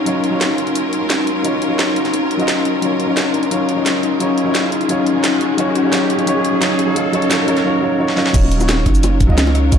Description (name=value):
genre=liquid drum and bass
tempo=174 BPM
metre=4/4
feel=straight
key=Eb minor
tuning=A4 = 440 Hz
part: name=warm baby grand piano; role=accompaniment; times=0.0-9.8 s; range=Gb3 to Eb5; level=-20 LUFS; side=right 2 dB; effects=ping-pong delay
part: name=clear symphonic string section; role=sustained chords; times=0.0-9.8 s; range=Gb3 to Db5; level=-24 LUFS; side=left 1 dB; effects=none
part: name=vibraphone with soft mallets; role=arpeggios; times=0.0-9.8 s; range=Db4 to Eb4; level=-18 LUFS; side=left 3 dB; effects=low-pass filter, ping-pong delay
part: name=long sustained 808-style bass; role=bass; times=0.0-9.8 s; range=Eb1 to Db2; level=-19 LUFS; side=right 1 dB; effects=high-pass filter
part: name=riser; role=sound effects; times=0.8-7.7 s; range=none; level=-26 LUFS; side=right 1 dB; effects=none
part: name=drum and bass drum kit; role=drums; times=0.1-9.8 s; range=crash cymbal, hi-hat, rim click, shaker, snare drum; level=-21 LUFS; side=equal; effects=high-pass filter on hats, high-pass filter on snare, high-pass filter on cymbals, high-pass filter on perc, high-pass filter on room
part: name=breakbeat sampler-style drum kit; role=drums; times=8.3-9.8 s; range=hi-hat, snare drum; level=-29 LUFS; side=right 1 dB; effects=high-pass filter on hats, high-pass filter on snare, high-pass filter on room
part: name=electronic kick drum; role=drums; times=8.3-9.8 s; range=none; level=-15 LUFS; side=right 1 dB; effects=none
part: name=bongos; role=percussion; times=8.4-9.8 s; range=none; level=-26 LUFS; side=left 3 dB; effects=none
room=wet digital room reverb, RT60 1.1 s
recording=dark, warm production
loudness=-14 LUFS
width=side -8 dB against mid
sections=0.0-8.3 A section; 8.3-9.8 B section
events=build-up 0.0-8.3; filter sweep on vibraphone 0.0-8.3; riser 0.8-7.7; drum fill 8.1; drop 8.3-9.8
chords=0.0 Ebm9; 4.2 Gbmaj7; 8.3 Ebm9